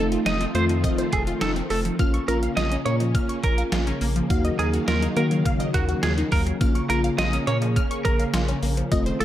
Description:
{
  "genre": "synth-pop",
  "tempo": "104 BPM",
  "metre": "4/4",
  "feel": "straight",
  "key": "Bb minor",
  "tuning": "A4 = 440 Hz",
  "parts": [
    { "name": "twelve-string electric guitar", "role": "second line", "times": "0.0-9.2 s", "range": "Gb4 to Eb5", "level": "-28 LUFS", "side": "right 4 dB", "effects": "tape echo" },
    { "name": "FM electric piano with soft pad layer", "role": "accompaniment", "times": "0.0-9.2 s", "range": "A3 to Ab4", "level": "-28 LUFS", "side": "left 2 dB", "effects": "chorus" },
    { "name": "string machine, violas", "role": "sustained chords", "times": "0.0-9.2 s", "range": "Db3 to F5", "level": "-28 LUFS", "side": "equal", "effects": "ensemble chorus" },
    { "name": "wide unison pluck", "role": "arpeggios", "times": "0.0-9.2 s", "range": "F3 to F6", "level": "-30 LUFS", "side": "left 2 dB", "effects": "tape echo" },
    { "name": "round analog bass", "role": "bass", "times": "0.0-9.2 s", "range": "F1 to Eb3", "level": "-26 LUFS", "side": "equal", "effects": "none" },
    { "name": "detuned 8-bit digital drum machine", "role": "drums", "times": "0.1-9.2 s", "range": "hi-hat, kick drum, snare drum", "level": "-26 LUFS", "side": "equal", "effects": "overdrive, gated reverb" }
  ],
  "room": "light reverb",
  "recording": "none",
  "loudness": "-20 LUFS",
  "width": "side -12 dB against mid",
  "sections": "0.0-9.2 A section",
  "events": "none",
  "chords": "0.0 F7; 2.0 Bbm; 4.3 Ebmadd9; 6.6 Bbm"
}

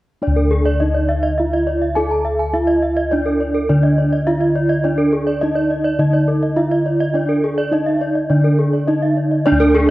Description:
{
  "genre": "Balinese gamelan",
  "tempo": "104 BPM",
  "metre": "4/4",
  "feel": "straight",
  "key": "D pelog",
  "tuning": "A4 = 438 Hz",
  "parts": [
    { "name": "gamelan-type bronze metallophone", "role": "melody", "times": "0.2-9.9 s", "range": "D4 to A4-45c", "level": "-18 LUFS", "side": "right 1 dB", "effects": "none" },
    { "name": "gamelan-type bronze metallophone", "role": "arpeggios", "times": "0.2-9.9 s", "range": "A4-45c to A5-45c", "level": "-23 LUFS", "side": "left 2 dB", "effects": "none" },
    { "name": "gamelan-type bossed gongs", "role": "bass", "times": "0.2-9.9 s", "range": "D2 to E4+50c", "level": "-19 LUFS", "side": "left 1 dB", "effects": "none" },
    { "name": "gamelan-type bronze metallophone", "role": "arpeggios", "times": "0.4-9.7 s", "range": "Bb4-40c to Bb5-40c", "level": "-23 LUFS", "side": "right 2 dB", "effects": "none" }
  ],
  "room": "moderate concert hall reverb, RT60 2.4 s",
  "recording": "worn, warbling old tape, cassette tape, warbly pitch drift",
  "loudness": "-14 LUFS",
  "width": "side -17 dB against mid",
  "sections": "0.2-9.5 A section",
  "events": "none",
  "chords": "none"
}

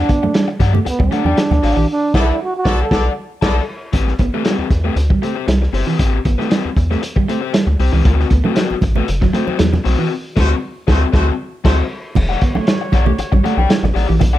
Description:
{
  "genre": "funk",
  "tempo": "117 BPM",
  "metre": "4/4",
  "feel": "straight",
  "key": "E minor",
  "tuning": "A4 = 437 Hz",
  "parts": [
    { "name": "breathy trombone", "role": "melody", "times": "0.0-3.1 s", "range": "B3 to A4", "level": "-18 LUFS", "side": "right 2 dB", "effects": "plate reverb" },
    { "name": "crunchy overdriven guitar", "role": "accompaniment", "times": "0.0-14.4 s", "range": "C4 to A5", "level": "-22 LUFS", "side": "left 8 dB", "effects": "none" },
    { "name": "rubbery square bass", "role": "bass", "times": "0.0-14.4 s", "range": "E1 to G2", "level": "-16 LUFS", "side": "equal", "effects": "none" },
    { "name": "electric guitar at the edge of break-up", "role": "riff", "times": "0.1-14.4 s", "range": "E3 to B3", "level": "-22 LUFS", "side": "right 4 dB", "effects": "spring reverb" },
    { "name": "vintage drum kit", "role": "drums", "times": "0.1-14.3 s", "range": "crash cymbal, hi-hat, kick drum, snare drum", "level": "-18 LUFS", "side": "equal", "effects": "none" },
    { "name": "congas", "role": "percussion", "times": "0.2-1.6, 8.4-14.3 s", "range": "none", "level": "-23 LUFS", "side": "right 4 dB", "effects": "none" },
    { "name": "warm horn section", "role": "second line", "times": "2.1-3.6, 10.4-14.4 s", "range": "F#3 to D5", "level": "-26 LUFS", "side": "equal", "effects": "none" }
  ],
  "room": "light reverb",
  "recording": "dark, warm production",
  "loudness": "-14 LUFS",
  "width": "side -14 dB against mid",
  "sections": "0.0-3.9 A section; 3.9-12.2 B section; 12.2-14.4 C section",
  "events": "trombone solo 0.0-3.9; band accent 1.9-3.9, 10.1-12.2",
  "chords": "0.0 Em9 (rootless); 1.9 Bm7; 3.9 Am9; 8.1 D13; 12.2 Em9"
}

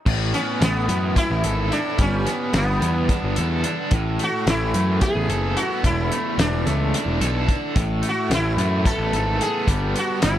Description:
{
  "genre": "psychedelic rock",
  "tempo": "218 BPM (eighths)",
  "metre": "7/8",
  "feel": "straight",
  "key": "unclear",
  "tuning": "A4 = 440 Hz",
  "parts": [
    { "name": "crunchy overdriven guitar", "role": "riff", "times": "0.1-10.4 s", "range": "E2 to A4", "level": "-24 LUFS", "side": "equal", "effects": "tremolo" },
    { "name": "fuzz picked electric bass", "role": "bass", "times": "0.1-10.4 s", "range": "E1 to F#2", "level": "-23 LUFS", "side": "equal", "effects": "overdrive" },
    { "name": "damped 70s drum kit", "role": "drums", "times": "0.1-10.4 s", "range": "crash cymbal, hi-hat, kick drum, snare drum", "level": "-22 LUFS", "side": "equal", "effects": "none" },
    { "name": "sitar", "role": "melody", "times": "0.3-10.4 s", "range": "B3 to A4", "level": "-26 LUFS", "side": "equal", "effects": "tape echo" }
  ],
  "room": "small room ambience",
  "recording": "none",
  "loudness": "-19 LUFS",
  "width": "side -12 dB against mid",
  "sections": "0.1-10.4 A section",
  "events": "none",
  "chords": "0.1 Asus2; 2.0 Gadd9; 3.9 Asus2; 5.8 E7sus4; 7.8 Asus2; 9.7 G"
}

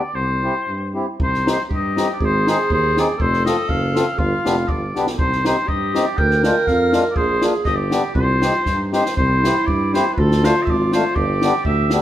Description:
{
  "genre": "alpine folk, alpine dance band",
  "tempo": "120 BPM",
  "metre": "2/4",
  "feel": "rubato",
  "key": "C minor",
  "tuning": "A4 = 440 Hz",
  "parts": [
    { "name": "warm oboe", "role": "melody", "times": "0.0-12.0 s", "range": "A4 to G5", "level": "-22 LUFS", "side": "left 1 dB", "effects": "none" },
    { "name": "mellow accordion", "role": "accompaniment", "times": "0.0-12.0 s", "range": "Ab3 to A4", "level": "-23 LUFS", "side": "left 2 dB", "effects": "none" },
    { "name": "mellow tuba", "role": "bass", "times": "0.1-12.0 s", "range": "F1 to G2", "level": "-22 LUFS", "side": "equal", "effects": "none" },
    { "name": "clear clarinet", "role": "second line", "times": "1.2-12.0 s", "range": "Eb4 to Bb4", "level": "-24 LUFS", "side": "right 3 dB", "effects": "none" },
    { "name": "compact cocktail drum kit", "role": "drums", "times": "1.2-12.0 s", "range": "kick drum, snare drum", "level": "-24 LUFS", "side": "equal", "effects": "none" }
  ],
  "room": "moderate stone room reverb, RT60 1.2 s",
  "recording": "band playing live in one room",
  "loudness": "-16 LUFS",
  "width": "side -12 dB against mid",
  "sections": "0.0-1.2 A section; 1.2-9.2 B section; 9.2-12.0 A section",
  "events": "drum fill 4.9, 8.7-9.2",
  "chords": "0.2 C; 1.2 Cm; 2.2 Ab; 3.2 F; 4.2 G7; 5.2 Cm; 6.2 Ddim; 7.2 Bb; 7.7 G; 8.2 Cm; 9.2 C; 10.2 Dm; 11.2 G"
}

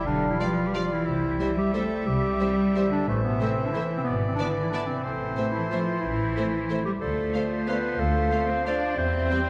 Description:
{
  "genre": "classical",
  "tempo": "182 BPM",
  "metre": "3/4",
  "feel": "uneven beats, rubato",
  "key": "C major",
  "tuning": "A4 = 440 Hz",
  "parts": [
    { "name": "clear clarinet", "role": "second line", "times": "0.0-9.5 s", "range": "A3 to D5", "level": "-32 LUFS", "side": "equal", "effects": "none" },
    { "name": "clear oboe", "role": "second line", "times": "0.0-9.5 s", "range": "C5 to F5", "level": "-38 LUFS", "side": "equal", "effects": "none" },
    { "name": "mellow hollow flute section", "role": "second line", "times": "0.0-9.5 s", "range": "A4 to G5", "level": "-37 LUFS", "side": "equal", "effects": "none" },
    { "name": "warm bassoon", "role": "accompaniment", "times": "0.0-9.5 s", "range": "E3 to G3", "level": "-36 LUFS", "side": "equal", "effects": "none" },
    { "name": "rich symphonic cello section", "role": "bass", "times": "0.0-9.5 s", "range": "A2 to D4", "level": "-32 LUFS", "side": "equal", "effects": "none" },
    { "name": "warm symphonic double bass section", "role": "bass", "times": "0.1-9.2 s", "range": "G#1 to E2", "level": "-33 LUFS", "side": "equal", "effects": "none" },
    { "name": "rich symphonic violin section", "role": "melody", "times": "0.4-9.4 s", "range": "E5 to G5", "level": "-47 LUFS", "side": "equal", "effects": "none" },
    { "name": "rich symphonic violin section", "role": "second line", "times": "0.4-9.4 s", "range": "C5 to D5", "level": "-40 LUFS", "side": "equal", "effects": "none" },
    { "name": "warm studio viola section", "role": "accompaniment", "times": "0.4-9.4 s", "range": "G3 to B3", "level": "-38 LUFS", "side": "equal", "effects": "none" },
    { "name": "mellow French horn section", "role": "sustained chords", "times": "0.4-9.4 s", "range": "none", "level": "barely audible", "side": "none", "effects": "none" },
    { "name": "mellow trombone section", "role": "sustained chords", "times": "0.4-9.4 s", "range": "D3 to B3", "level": "-42 LUFS", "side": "equal", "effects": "none" }
  ],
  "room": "wet scoring stage reverb, RT60 1.8 s",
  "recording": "dark, warm production",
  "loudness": "-26 LUFS",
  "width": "mono",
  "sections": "0.0-9.5 A section",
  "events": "none",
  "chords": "0.1 G7/B; 1.1 C; 3.1 Am; 4.1 E7/G#; 5.0 Am; 7.0 Dm7; 9.0 C/E"
}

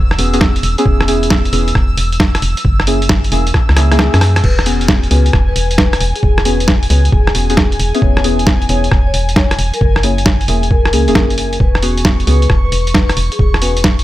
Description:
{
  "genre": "UK garage, two-step garage",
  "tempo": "134 BPM",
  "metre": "4/4",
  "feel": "swing 67% on 16ths",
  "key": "E major",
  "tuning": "A4 = 440 Hz",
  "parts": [
    { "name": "airy breathy pad", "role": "sustained chords", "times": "0.0-14.0 s", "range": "G#5 to E6", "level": "-25 LUFS", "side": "equal", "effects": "chorus, sidechain pumping" },
    { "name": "organ-like FM bass", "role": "bass", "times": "0.0-14.0 s", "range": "E1 to F#2", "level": "-15 LUFS", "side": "equal", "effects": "none" },
    { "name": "boom bap sampler-style drum kit", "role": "drums", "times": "0.1-14.0 s", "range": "crash cymbal, hi-hat, rim click, snare drum", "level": "-16 LUFS", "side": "equal", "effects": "none" },
    { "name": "deep mellow chord stab", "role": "stabs", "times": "0.2-13.7 s", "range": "A#3 to G#4", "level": "-18 LUFS", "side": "left 1 dB", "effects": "wide subtle chorus, tape echo" },
    { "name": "electronic kick drum", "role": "drums", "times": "0.4-14.0 s", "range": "none", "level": "-14 LUFS", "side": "equal", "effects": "none" },
    { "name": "vibraphone with soft mallets", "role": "melody", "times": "4.4-13.8 s", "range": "G#4 to C#5", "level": "-23 LUFS", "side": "left 4 dB", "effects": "none" }
  ],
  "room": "little or no reverb",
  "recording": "none",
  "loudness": "-10 LUFS",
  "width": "side -15 dB against mid",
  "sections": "0.0-14.0 A section",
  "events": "drum fill 3.5-4.4; kick drops out 4.0-4.4",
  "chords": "0.0 E6; 2.6 F#9; 4.4 E6; 9.8 F#9; 11.6 E6"
}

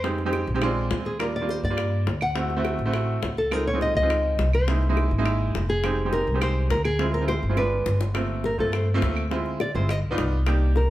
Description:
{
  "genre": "Afro-Cuban jazz",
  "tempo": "207 BPM",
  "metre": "4/4",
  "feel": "straight",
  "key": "C minor",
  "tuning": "A4 = 440 Hz",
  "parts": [
    { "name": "nylon-string guitar", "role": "melody", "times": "0.0-10.9 s", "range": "Ab4 to F#5", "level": "-27 LUFS", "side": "equal", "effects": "none" },
    { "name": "clear baby grand piano", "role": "accompaniment", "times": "0.0-10.8 s", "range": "G3 to G4", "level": "-27 LUFS", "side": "right 3 dB", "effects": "none" },
    { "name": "upright bass", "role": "bass", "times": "0.0-10.9 s", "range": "F1 to G2", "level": "-25 LUFS", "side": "equal", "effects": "none" },
    { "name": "bongos", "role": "percussion", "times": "0.0-10.9 s", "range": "none", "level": "-33 LUFS", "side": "left 5 dB", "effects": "none" },
    { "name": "claves", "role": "percussion", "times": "0.3-10.6 s", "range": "none", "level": "-38 LUFS", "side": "right 4 dB", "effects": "none" }
  ],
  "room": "moderate large studio reverb, RT60 1.0 s",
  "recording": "heard from further back in the room",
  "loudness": "-22 LUFS",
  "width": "side -15 dB against mid",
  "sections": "0.0-8.2 A section; 8.2-10.9 B section",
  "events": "drum fill 7.6-8.2; nylon-string guitar solo 8.2-10.9",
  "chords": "0.0 Fm9; 0.6 Bb9; 1.2 Ebmaj7; 2.4 D9; 3.5 Dbmaj7; 4.7 C7alt; 5.8 Fm7; 7.0 Dm7b5; 7.6 G7b9; 8.2 Gm11; 9.3 Dm7b5; 9.9 G7b13"
}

